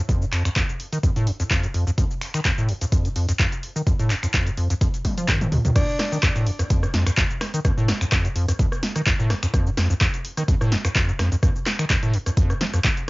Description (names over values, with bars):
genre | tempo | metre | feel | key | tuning
acid house | 127 BPM | 4/4 | swing 54% on 16ths | F mixolydian | A4 = 441 Hz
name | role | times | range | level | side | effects
acid bass, square | riff | 0.1-12.9 s | Eb2 to F3 | -23 LUFS | equal | overdrive, analog chorus, sidechain pumping, cassette tape
electronic kick drum | drums | 0.1-12.9 s | none | -22 LUFS | equal | overdrive, cassette tape
punchy analog drum machine | drums | 0.1-13.1 s | crash cymbal, finger snaps, handclaps, hi-hat, rim click, shaker, snare drum, toms | -25 LUFS | equal | overdrive, cassette tape
bright alto saxophone | melody | 5.8-6.2 s | D4 | -29 LUFS | equal | tape echo
room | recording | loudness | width
light reverb | home recording on cassette, nothing above 7.5 kHz | -19 LUFS | side -23 dB against mid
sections
0.0-5.8 A section; 5.8-13.1 B section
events
drum fill 5.0-5.8; drop 5.8-13.1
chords
0.0 N.C.; 5.8 F5